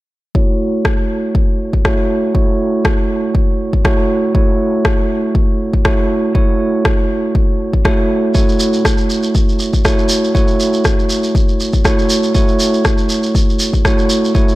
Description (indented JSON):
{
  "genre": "afro house",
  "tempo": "120 BPM",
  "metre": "4/4",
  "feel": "swing 54% on 16ths",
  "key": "F# minor",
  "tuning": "A4 = 440 Hz",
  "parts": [
    { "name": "bell-like tine electric piano", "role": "stabs", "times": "0.3-14.6 s", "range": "A3 to C#5", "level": "-16 LUFS", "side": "right 2 dB", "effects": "sidechain pumping, low-pass filter, tape echo" },
    { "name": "electronic kick drum", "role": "drums", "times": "0.3-14.5 s", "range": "none", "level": "-14 LUFS", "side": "equal", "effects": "none" },
    { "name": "electronic rim click", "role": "drums", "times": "0.8-14.0 s", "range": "none", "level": "-21 LUFS", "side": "left 1 dB", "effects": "none" },
    { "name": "shekere", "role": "percussion", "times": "8.3-14.6 s", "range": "none", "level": "-22 LUFS", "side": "right 2 dB", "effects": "none" }
  ],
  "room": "light reverb",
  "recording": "dry, gritty hardware recording",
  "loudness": "-12 LUFS",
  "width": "side -17 dB against mid",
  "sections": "0.3-14.6 A section",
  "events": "filter sweep on tine electric piano 0.3-14.6",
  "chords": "0.3 F#m7"
}